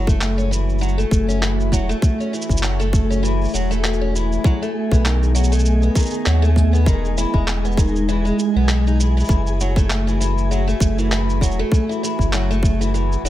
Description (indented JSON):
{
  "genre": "folktronica",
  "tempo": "99 BPM",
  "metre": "4/4",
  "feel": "swing 56% on 16ths",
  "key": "F# dorian",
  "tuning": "A4 = 440 Hz",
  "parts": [
    { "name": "warbly tape-like pad", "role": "sustained chords", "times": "0.0-13.3 s", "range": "G#3 to F#5", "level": "-26 LUFS", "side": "equal", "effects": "chorus, built-in reverb, phaser" },
    { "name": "picked twelve-string acoustic guitar", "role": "arpeggios", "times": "0.0-13.3 s", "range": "D#3 to D#4", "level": "-24 LUFS", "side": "left 1 dB", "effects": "tape echo" },
    { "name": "warm sub bass", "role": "bass", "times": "0.0-13.3 s", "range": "E1 to D#2", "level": "-19 LUFS", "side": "equal", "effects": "tube saturation" },
    { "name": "flickering grainy texture", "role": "texture", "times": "0.3-13.3 s", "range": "G#4 to G#5", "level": "-33 LUFS", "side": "left 1 dB", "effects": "built-in reverb" },
    { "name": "electronic kick drum", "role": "drums", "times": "0.1-12.8 s", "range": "none", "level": "-17 LUFS", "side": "equal", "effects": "overdrive" },
    { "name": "electronic shaker and handclaps", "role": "drums", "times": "0.1-13.3 s", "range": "none", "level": "-27 LUFS", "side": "right 1 dB", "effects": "none" }
  ],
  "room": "digital ambience",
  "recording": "none",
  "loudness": "-16 LUFS",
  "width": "side -14 dB against mid",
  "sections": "0.0-13.3 A section",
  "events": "none",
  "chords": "0.0 F#m7; 4.4 B7; 6.9 Emaj7; 9.3 F#m7"
}